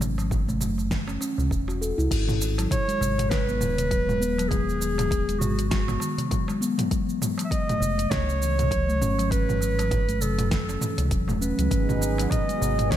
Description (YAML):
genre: organic downtempo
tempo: 100 BPM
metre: 4/4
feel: swing 57% on 16ths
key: unclear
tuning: A4 = 435 Hz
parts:
  - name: steel tongue drum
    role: arpeggios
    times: 0.0-12.6 s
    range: D#3 to A4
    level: -28 LUFS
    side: left 1 dB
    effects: ping-pong delay
  - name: round analog bass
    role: bass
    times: 0.0-13.0 s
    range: D#1 to C#2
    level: -27 LUFS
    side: equal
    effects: none
  - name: deep house drum kit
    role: drums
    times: 0.0-13.0 s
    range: cabasa, crash cymbal, hi-hat, snare drum, toms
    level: -30 LUFS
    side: equal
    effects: none
  - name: darbuka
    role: percussion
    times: 0.0-13.0 s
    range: none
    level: -36 LUFS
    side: right 1 dB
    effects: none
  - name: electronic kick drum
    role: drums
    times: 0.3-13.0 s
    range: none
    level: -28 LUFS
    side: equal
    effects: none
  - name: warm clarinet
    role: melody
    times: 2.7-13.0 s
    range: F#4 to E5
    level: -28 LUFS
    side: right 1 dB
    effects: ping-pong delay
  - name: warm analog pad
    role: sustained chords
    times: 11.7-13.0 s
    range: F#3 to G#4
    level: -30 LUFS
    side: right 1 dB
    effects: chorus, sidechain pumping
room: moderate lush hall reverb, RT60 2.6 s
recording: dreamy mix soaked in reverb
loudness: -22 LUFS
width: side -11 dB against mid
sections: 0.0-2.1 A section; 2.1-13.0 B section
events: none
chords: 0.0 F#m7; 2.1 G#m7; 6.9 F#7(no3); 11.7 G#m7